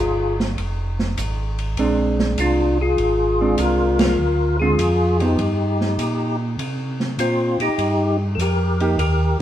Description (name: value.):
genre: soul jazz organ trio.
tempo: 100 BPM.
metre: 4/4.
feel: swing 69% on 8ths.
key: Bb mixolydian.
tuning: A4 = 444 Hz.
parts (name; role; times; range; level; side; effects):
percussive tonewheel organ; melody; 0.0-9.4 s; C4 to Bb4; -20 LUFS; left 2 dB; slow rotary speaker, chorus vibrato.
mellow tonewheel organ; bass; 0.0-9.4 s; F1 to C3; -22 LUFS; right 1 dB; chorus vibrato, slow rotary speaker.
open jazz drum kit; drums; 0.4-9.2 s; hi-hat, ride cymbal, snare drum; -27 LUFS; right 1 dB; none.
hollow-body jazz guitar; accompaniment; 1.8-9.0 s; D3 to G4; -22 LUFS; right 3 dB; none.
room: wet studio reverb, RT60 0.9 s.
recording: heard from further back in the room.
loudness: -17 LUFS.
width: side -11 dB against mid.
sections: 0.0-9.4 A section.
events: band accent 3.9-4.2.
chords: 0.0 Bb9; 4.2 Dm7b5; 5.4 Eb/G; 6.6 Cm7.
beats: 0.58 1.18 | 1.78 2.39 2.99 3.59 | 4.19 4.79 5.39 5.99 | 6.59 7.19 7.79 8.39 | 8.99.